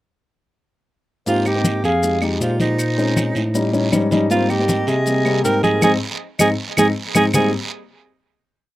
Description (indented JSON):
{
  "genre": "Afro-Cuban jazz",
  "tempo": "158 BPM",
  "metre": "4/4",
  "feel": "straight",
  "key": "Ab major",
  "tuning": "A4 = 440 Hz",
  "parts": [
    { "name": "clear alto saxophone", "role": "melody", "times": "1.3-7.5 s", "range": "Eb4 to Bb4", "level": "-20 LUFS", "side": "right 3 dB", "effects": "none" },
    { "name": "mellow concert flute", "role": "second line", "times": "1.3-7.5 s", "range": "C5 to G5", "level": "-26 LUFS", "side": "left 2 dB", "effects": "none" },
    { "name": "dark concert grand piano", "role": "accompaniment", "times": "1.3-7.5 s", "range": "G3 to G4", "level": "-21 LUFS", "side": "left 2 dB", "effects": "none" },
    { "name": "overdriven tine electric piano", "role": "bass", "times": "1.3-7.5 s", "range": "F2 to C3", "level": "-22 LUFS", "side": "equal", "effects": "none" },
    { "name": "congas", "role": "percussion", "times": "1.3-7.4 s", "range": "none", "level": "-23 LUFS", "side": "left 2 dB", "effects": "none" },
    { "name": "guiro", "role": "percussion", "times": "1.3-7.4 s", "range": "none", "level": "-31 LUFS", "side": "right 5 dB", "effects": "none" },
    { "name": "maracas", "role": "percussion", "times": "1.3-7.4 s", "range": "none", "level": "-28 LUFS", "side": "left 4 dB", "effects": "none" },
    { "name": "claves", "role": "percussion", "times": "1.5-7.4 s", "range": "none", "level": "-28 LUFS", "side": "right 3 dB", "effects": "none" }
  ],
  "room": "little or no reverb",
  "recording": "recorded outdoors, with no room sound",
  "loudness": "-16 LUFS",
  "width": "side -16 dB against mid",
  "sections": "1.3-7.3 A section; 7.3-8.8 final chord",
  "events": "band accent 5.8-7.3; grand piano fill 6.2-7.3",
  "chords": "1.3 Abmaj9; 2.0 Fm9; 2.8 Bbm11; 3.5 A7#11; 4.3 Abmaj9"
}